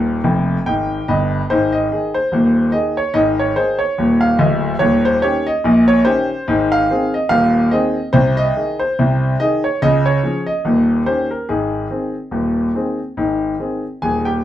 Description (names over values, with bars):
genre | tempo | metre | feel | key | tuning
ragtime piano | 72 BPM | 2/4 | swing 57% on 16ths | Ab major | A4 = 441 Hz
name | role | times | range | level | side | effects
clear grand piano | solo | 0.0-14.4 s | D1 to Ab5 | -14 LUFS | equal | none
room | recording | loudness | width
wet studio ambience, RT60 0.5 s | heard from further back in the room | -14 LUFS | side -12 dB against mid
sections
0.0-14.4 A section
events
grand piano fill 0.2-1.5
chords
0.0 Eb; 1.5 Ab5; 4.8 Eb7; 6.5 Ab; 8.2 Ab/C; 9.8 Db; 10.6 Eb7; 11.5 Ab